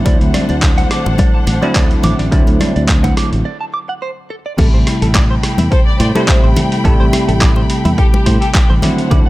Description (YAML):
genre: nu-disco, nu disco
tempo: 106 BPM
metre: 4/4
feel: swing 54% on 16ths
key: A dorian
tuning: A4 = 440 Hz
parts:
  - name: bell-like tine electric piano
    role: accompaniment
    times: 0.0-9.3 s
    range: C3 to E4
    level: -18 LUFS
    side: equal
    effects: ensemble chorus, sidechain pumping, slapback echo
  - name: rich studio string section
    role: sustained chords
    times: 0.0-9.3 s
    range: D4 to B5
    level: -25 LUFS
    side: left 2 dB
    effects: sidechain pumping
  - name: direct-recorded clean electric guitar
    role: riff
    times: 0.1-9.3 s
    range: E4 to D6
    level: -24 LUFS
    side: right 2 dB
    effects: analog chorus, slapback echo
  - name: modern bright fingered electric bass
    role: bass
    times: 0.1-9.3 s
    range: A1 to A2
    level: -16 LUFS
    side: equal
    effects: none
  - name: dusty soul sampler-style drum kit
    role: drums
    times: 0.1-9.2 s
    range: crash cymbal, handclaps, hi-hat, rim click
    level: -21 LUFS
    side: equal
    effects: none
  - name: electronic kick drum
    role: drums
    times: 0.1-9.2 s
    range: none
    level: -13 LUFS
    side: equal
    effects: none
  - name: congas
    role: percussion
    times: 0.1-9.2 s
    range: none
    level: -21 LUFS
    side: left 2 dB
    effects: none
  - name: rich chamber violin section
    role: melody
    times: 5.7-8.6 s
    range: G4 to D5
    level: -23 LUFS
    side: left 2 dB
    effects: tape echo
room: little or no reverb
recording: none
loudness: -10 LUFS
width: side -18 dB against mid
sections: 0.0-4.6 A section; 4.6-9.3 B section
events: filter sweep on tine electric piano 0.0-4.6; break 3.5-4.6; drop 4.6-9.3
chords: 0.0 D7; 4.6 Am9